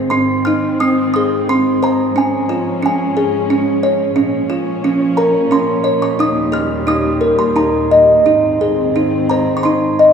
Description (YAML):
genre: children's music, lullaby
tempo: 88 BPM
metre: 3/4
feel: rubato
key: Ab major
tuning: A4 = 440 Hz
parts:
  - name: music box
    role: melody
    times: 0.0-10.1 s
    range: C4 to F6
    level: -13 LUFS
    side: equal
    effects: none
  - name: dark studio string section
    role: sustained chords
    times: 0.0-10.1 s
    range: Eb2 to Db4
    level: -20 LUFS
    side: equal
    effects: none
room: wet cathedral reverb, RT60 4.8 s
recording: recorded in a church or concert hall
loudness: -12 LUFS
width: side -7 dB against mid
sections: 0.1-10.1 A section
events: none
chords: 0.1 Ab; 2.2 Db/Ab; 4.2 Bbm; 6.2 Eb; 8.3 Ab